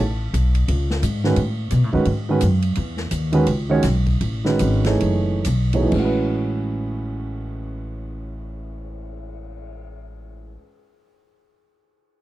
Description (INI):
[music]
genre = modal jazz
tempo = 121-173 BPM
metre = 4/4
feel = swing 62% on 8ths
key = A lydian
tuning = A4 = 440 Hz
[part]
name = upright bass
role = bass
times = 0.0-10.6 s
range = F#1 to B2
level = -22 LUFS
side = equal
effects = none
[part]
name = open jazz drum kit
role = drums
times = 0.3-9.8 s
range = crash cymbal, cymbal swell, hi-hat, kick drum, ride cymbal, snare drum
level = -32 LUFS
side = equal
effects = none
[part]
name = warm grand piano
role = accompaniment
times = 1.2-10.7 s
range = A2 to C#5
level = -22 LUFS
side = right 2 dB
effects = none
[sound]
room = little or no reverb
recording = dry, close 1970s-style studio recording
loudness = -18 LUFS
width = side -15 dB against mid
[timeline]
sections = 0.0-5.9 A section; 5.9-9.9 B section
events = slowing down 2.8-5.9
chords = 0.0 Amaj13